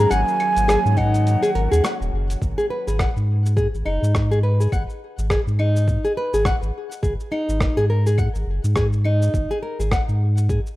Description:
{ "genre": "organic downtempo", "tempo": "104 BPM", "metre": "4/4", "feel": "swing 58% on 16ths", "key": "unclear", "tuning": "A4 = 440 Hz", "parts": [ { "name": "breathy hollow bansuri", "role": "melody", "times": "0.0-2.1 s", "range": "F#5 to A#5", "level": "-22 LUFS", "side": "right 2 dB", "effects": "ping-pong delay" }, { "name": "bowed-like drone", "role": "sustained chords", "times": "0.0-2.4 s", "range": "D#3 to F#4", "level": "-30 LUFS", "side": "equal", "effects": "built-in reverb, sidechain pumping" }, { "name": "flamenco guitar", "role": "arpeggios", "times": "0.0-10.6 s", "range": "D#4 to F#5", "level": "-24 LUFS", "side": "left 1 dB", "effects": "ping-pong delay" }, { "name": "warm sub bass", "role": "bass", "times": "0.0-10.6 s", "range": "D#1 to G#2", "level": "-19 LUFS", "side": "equal", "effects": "sidechain pumping" }, { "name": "dusty soul sampler-style drum kit", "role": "drums", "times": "0.1-10.8 s", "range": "claves, hi-hat, rim click, shaker", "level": "-30 LUFS", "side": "equal", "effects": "small room reverb" }, { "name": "electronic kick drum", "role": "drums", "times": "1.0-10.6 s", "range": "none", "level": "-24 LUFS", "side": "equal", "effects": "small room reverb" } ], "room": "digital ambience", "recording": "rough home demo mix", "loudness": "-18 LUFS", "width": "side -17 dB against mid", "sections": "0.0-2.4 A section; 2.4-10.8 B section", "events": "break 1.3-2.4", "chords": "0.0 D#m7; 2.4 G#5; 7.0 N.C." }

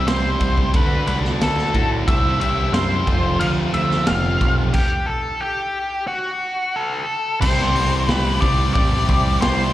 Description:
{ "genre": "classic rock", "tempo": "90 BPM", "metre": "4/4", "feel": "straight", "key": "unclear", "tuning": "A4 = 440 Hz", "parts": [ { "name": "octave-fuzz lead guitar", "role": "melody", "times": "0.0-9.7 s", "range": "F#4 to F5", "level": "-22 LUFS", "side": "left 1 dB", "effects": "distortion, plate reverb, slapback echo, tape echo" }, { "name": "tonewheel organ", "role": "sustained chords", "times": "0.0-9.7 s", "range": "F#3 to D5", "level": "-32 LUFS", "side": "right 1 dB", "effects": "none" }, { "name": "sludgy distorted guitar", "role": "riff", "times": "0.0-9.7 s", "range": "F2 to G4", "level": "-26 LUFS", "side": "right 7 dB", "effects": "overdrive" }, { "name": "tight distorted guitar", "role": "riff", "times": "0.0-9.7 s", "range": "F2 to G4", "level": "-27 LUFS", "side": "left 10 dB", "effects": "distortion, slapback echo" }, { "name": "growling picked electric bass", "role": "bass", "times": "0.1-9.7 s", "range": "F1 to A2", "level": "-22 LUFS", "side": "equal", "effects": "overdrive" }, { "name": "raw garage drum kit", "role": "drums", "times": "0.1-9.6 s", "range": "crash cymbal, hi-hat, kick drum, ride cymbal, snare drum", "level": "-22 LUFS", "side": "equal", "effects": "none" } ], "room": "light reverb", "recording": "live gig heard through the venue's PA, recital hall reverb", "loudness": "-17 LUFS", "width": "side -14 dB against mid", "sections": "0.0-7.4 A section; 7.4-9.7 B section", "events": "stop 4.8-7.4", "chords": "0.0 C; 0.7 D; 2.1 C; 3.1 F; 4.8 N.C.; 7.4 Cadd9" }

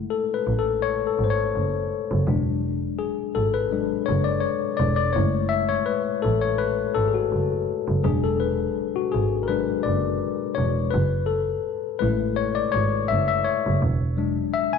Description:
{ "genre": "lush 1970s-style soul", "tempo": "83 BPM", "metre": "4/4", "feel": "swing 54% on 16ths", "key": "F# minor", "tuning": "A4 = 441 Hz", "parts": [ { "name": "tine electric piano", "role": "accompaniment", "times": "0.0-14.8 s", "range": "F#3 to G#5", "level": "-23 LUFS", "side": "left 9 dB", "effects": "overdrive, fast stereo tremolo" }, { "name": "clear double bass", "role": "bass", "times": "0.5-14.4 s", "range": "E1 to A1", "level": "-25 LUFS", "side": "right 3 dB", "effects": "none" } ], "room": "light reverb, studio reverb", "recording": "1960s-style stereo", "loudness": "-21 LUFS", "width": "side -6 dB against mid", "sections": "0.0-14.8 A section", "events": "tine electric piano solo 0.0-14.8", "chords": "0.0 F#m7; 2.3 E9; 5.2 F#m7; 8.0 E9; 10.9 F#m7; 13.8 E9" }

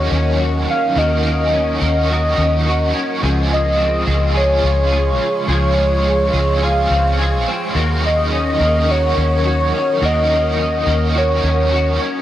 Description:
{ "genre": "dream pop", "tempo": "106 BPM", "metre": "4/4", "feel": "straight", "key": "unclear", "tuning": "A4 = 438 Hz", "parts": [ { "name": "warm velvety synth lead", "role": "melody", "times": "0.0-12.0 s", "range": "Db5 to F5", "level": "-18 LUFS", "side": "equal", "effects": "chorus, tape echo" }, { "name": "cranked stack guitar", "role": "accompaniment", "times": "0.0-12.2 s", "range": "Db3 to Bb4", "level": "-23 LUFS", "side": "right 3 dB", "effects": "overdrive, tremolo, ensemble chorus" }, { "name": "ethereal airy pad", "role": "sustained chords", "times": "0.0-12.2 s", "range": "Ab4 to Eb6", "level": "-26 LUFS", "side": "left 1 dB", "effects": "ensemble chorus, built-in reverb" }, { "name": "clean electric guitar", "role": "arpeggios", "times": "0.0-12.2 s", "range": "F3 to Ab4", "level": "-23 LUFS", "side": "left 3 dB", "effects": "ensemble chorus, tape echo" }, { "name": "vintage muted fingered electric bass", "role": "bass", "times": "0.0-12.0 s", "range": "Db2 to Eb2", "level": "-18 LUFS", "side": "equal", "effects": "transformer saturation" } ], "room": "light reverb", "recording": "dry, gritty hardware recording", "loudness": "-14 LUFS", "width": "side -12 dB against mid", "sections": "0.0-12.2 A section", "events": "none", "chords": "0.0 Ebm7; 3.2 Dbmaj7; 7.8 Ebm7" }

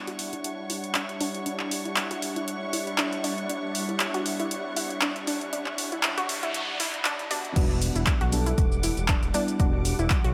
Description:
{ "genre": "deep house", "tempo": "118 BPM", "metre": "4/4", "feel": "swing 55% on 16ths", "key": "E dorian", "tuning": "A4 = 440 Hz", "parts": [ { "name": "soft string machine", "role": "sustained chords", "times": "0.0-10.3 s", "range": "G3 to D6", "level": "-38 LUFS", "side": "equal", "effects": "phaser, ensemble chorus, sidechain pumping" }, { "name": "deep mellow chord stab", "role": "stabs", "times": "0.0-10.3 s", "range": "G3 to A4", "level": "-35 LUFS", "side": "equal", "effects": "chorus, phaser, delay" }, { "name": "riser and noise sweep", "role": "sound effects", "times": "3.4-7.6 s", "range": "none", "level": "-40 LUFS", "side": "equal", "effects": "none" }, { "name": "warbly tape-like pad", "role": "texture", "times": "0.0-7.6 s", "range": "G3 to F#5", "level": "-39 LUFS", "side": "equal", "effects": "chorus, built-in reverb, sidechain pumping" }, { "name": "warm chamber violin section", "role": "texture", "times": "0.0-7.6 s", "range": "C#5 to C#6", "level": "-41 LUFS", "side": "equal", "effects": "sidechain pumping" }, { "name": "warbly dusty pluck", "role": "arpeggios", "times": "0.1-10.3 s", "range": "D4 to F#4", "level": "-36 LUFS", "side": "equal", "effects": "chorus, sidechain pumping, delay" }, { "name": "punchy analog drum machine", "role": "drums", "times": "0.1-10.3 s", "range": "crash cymbal, handclaps, hi-hat, shaker", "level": "-32 LUFS", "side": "equal", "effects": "overdrive, small room ambience" }, { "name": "smooth synth bass", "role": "bass", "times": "7.6-10.3 s", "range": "E1 to B1", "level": "-30 LUFS", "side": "equal", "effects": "sidechain pumping" }, { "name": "electronic kick drum", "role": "drums", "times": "7.6-10.2 s", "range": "none", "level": "-27 LUFS", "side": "equal", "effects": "overdrive, small room ambience" } ], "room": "moderate echo chamber reverb, RT60 2.2 s", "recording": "high-pass filter", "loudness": "-27 LUFS", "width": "mono", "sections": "0.0-7.6 A section; 7.6-10.3 B section", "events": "build-up 0.0-7.6; filter sweep on synth stab 0.0-7.6; filter sweep on synth pluck 0.0-7.6; noise sweep 5.5-7.6; drop 7.6-10.3", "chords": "0.0 Em9" }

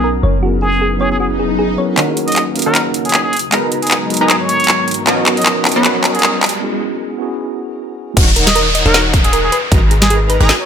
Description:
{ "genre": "future bass", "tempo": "155 BPM", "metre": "4/4", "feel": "swing 56% on 16ths, half-time", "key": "unclear", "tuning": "A4 = 440 Hz", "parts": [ { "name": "trumpet with plunger mute", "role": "melody", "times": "0.0-10.7 s", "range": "G#4 to D#5", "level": "-19 LUFS", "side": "equal", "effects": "sidechain pumping, tape echo" }, { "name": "mellow tine electric piano", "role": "accompaniment", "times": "0.0-8.2 s", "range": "F#3 to A#5", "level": "-20 LUFS", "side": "right 1 dB", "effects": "medium stereo tremolo, sidechain pumping, ping-pong delay" }, { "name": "ethereal airy pad", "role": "sustained chords", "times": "0.0-6.6 s", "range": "G#2 to A#5", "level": "-25 LUFS", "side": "left 1 dB", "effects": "ensemble chorus, built-in reverb, sidechain pumping" }, { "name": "thumb-piano-like synth pluck", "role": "arpeggios", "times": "0.0-1.8, 8.2-10.6 s", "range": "F#4 to D#5", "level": "-21 LUFS", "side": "right 1 dB", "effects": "chorus, sidechain pumping, ping-pong delay" }, { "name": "warm 808-style bass", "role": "bass", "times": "0.0-1.8, 8.2-10.5 s", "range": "D#1 to B1", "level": "-16 LUFS", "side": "equal", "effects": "sidechain pumping" }, { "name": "swell, riser and downlifter", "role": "sound effects", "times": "1.3-10.7 s", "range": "none", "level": "-21 LUFS", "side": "left 1 dB", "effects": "none" }, { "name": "supersaw stab", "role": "riff", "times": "2.0-10.5 s", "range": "D#3 to A#5", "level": "-18 LUFS", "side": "equal", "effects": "sidechain pumping, low-pass filter" }, { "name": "trap drum kit", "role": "drums", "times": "2.0-10.6 s", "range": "crash cymbal, handclaps, hi-hat, snare drum", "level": "-15 LUFS", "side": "equal", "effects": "none" }, { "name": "electronic kick drum", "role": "drums", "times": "8.2-9.8 s", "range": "none", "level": "-12 LUFS", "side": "equal", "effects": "none" } ], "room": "light reverb", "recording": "high-pass filter", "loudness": "-11 LUFS", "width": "side -8 dB against mid", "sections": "0.0-2.0 A section; 2.0-8.2 B section; 8.2-10.7 C section", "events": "swell 1.3-2.0; build-up 2.0-8.2; drum fill 2.0-6.6; filter sweep on supersaw synth 2.0-8.2; filter sweep on ambient pad 2.0-8.2; filter sweep 2.0-8.2; riser 3.0-6.6; break 6.6-8.2; drop 8.2-10.7", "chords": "0.2 F#9sus4; 2.0 D#m7; 3.3 G#m9; 5.1 Bmaj7; 6.4 F#9sus4; 8.2 D#m7; 9.5 G#madd9" }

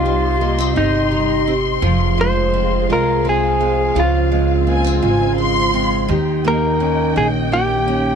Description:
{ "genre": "six-eight pop ballad", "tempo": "56 BPM (dotted quarters)", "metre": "6/8", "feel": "straight", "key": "unclear", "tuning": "A4 = 439 Hz", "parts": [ { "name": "direct-recorded clean electric guitar", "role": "melody", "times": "0.0-8.2 s", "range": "Eb4 to C5", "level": "-19 LUFS", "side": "equal", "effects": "none" }, { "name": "fingerpicked plugged-in steel-string acoustic guitar", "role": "accompaniment", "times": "0.0-8.2 s", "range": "C3 to G4", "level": "-19 LUFS", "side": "equal", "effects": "double-tracked left and right" }, { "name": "dark studio string section", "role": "sustained chords", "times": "0.0-8.2 s", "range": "C4 to C6", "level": "-26 LUFS", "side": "left 4 dB", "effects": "none" }, { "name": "picked steel-string acoustic guitar", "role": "arpeggios", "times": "0.0-8.2 s", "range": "Eb3 to Eb4", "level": "-27 LUFS", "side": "right 14 dB", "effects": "none" }, { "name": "upright bass", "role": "bass", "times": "0.0-8.2 s", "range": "F1 to Eb2", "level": "-21 LUFS", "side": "equal", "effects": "none" }, { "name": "warm studio violin section", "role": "second line", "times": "4.7-6.3 s", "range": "Ab5 to C6", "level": "-21 LUFS", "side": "left 1 dB", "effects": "none" } ], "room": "little or no reverb", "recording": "dry, close 1970s-style studio recording", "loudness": "-14 LUFS", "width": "side -7 dB against mid", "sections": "0.0-8.2 A section", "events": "none", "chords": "0.0 Cm; 1.8 Fm; 4.0 Dbmaj7; 6.1 Eb7" }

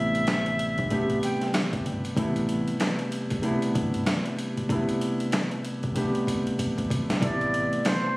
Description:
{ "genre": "hip hop, boom-bap hip-hop", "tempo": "95 BPM", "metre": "4/4", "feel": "swing 60% on 16ths", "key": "A minor", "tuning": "A4 = 440 Hz", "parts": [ { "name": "concert flute", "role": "melody", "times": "0.0-1.5, 7.2-8.2 s", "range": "C5 to G5", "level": "-28 LUFS", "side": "equal", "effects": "high-pass filter, low-pass filter, ping-pong delay" }, { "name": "warm upright piano", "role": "accompaniment", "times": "0.0-8.2 s", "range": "C3 to G4", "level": "-27 LUFS", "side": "equal", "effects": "high-pass filter, low-pass filter" }, { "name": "deep dub fingered electric bass", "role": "bass", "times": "0.0-7.7 s", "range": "G1 to A1", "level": "-31 LUFS", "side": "equal", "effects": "none" }, { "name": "boom bap sampler-style drum kit", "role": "drums", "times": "0.1-8.0 s", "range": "handclaps, hi-hat, kick drum, snare drum", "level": "-29 LUFS", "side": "equal", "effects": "none" } ], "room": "little or no reverb", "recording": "recorded on a phone in the room, studio reverb, vinyl crackle", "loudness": "-24 LUFS", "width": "side -22 dB against mid", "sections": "0.0-7.2 A section", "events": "drum fill 6.0-7.2", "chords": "0.0 Am7" }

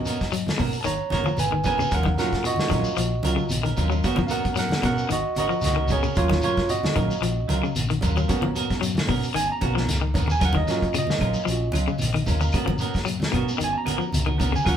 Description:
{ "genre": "afrobeat", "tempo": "113 BPM", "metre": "4/4", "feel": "swing 54% on 16ths", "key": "unclear", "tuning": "A4 = 440 Hz", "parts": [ { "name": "barky tine electric piano", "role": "accompaniment", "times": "0.0-14.8 s", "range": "Bb3 to Bb5", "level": "-27 LUFS", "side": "right 3 dB", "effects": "overdrive" }, { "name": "electric guitar at the edge of break-up", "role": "arpeggios", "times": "0.0-14.6 s", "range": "Cb3 to Gb3", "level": "-29 LUFS", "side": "left 6 dB", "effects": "none" }, { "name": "semi-hollow electric guitar", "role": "stabs", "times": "0.1-14.8 s", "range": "Gb3 to Bb4", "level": "-29 LUFS", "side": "right 4 dB", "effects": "none" }, { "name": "vintage drum kit", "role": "drums", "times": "0.1-14.8 s", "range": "hi-hat, kick drum, snare drum", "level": "-28 LUFS", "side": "equal", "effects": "none" }, { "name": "shekere", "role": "percussion", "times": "0.1-14.8 s", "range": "none", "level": "-33 LUFS", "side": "left 2 dB", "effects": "none" }, { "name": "congas", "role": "percussion", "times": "0.3-14.8 s", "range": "none", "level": "-30 LUFS", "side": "equal", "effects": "none" }, { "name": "fingered electric bass", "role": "bass", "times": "0.6-14.8 s", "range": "Ab1 to Eb2", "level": "-27 LUFS", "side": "equal", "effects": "none" }, { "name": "claves", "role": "percussion", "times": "10.4-14.8 s", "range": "none", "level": "-37 LUFS", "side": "left 5 dB", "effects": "none" } ], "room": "moderate studio reverb, RT60 0.6 s", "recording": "band playing live in one room", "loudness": "-21 LUFS", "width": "side -9 dB against mid", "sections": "0.0-14.8 A section", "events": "tine electric piano solo 0.0-14.8; drum fill 1.3-1.9", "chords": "0.0 Abm11; 1.9 Ebm9; 4.0 Abm11; 6.2 Ebm9; 8.3 Abm11; 10.4 Ebm9; 12.5 Abm11" }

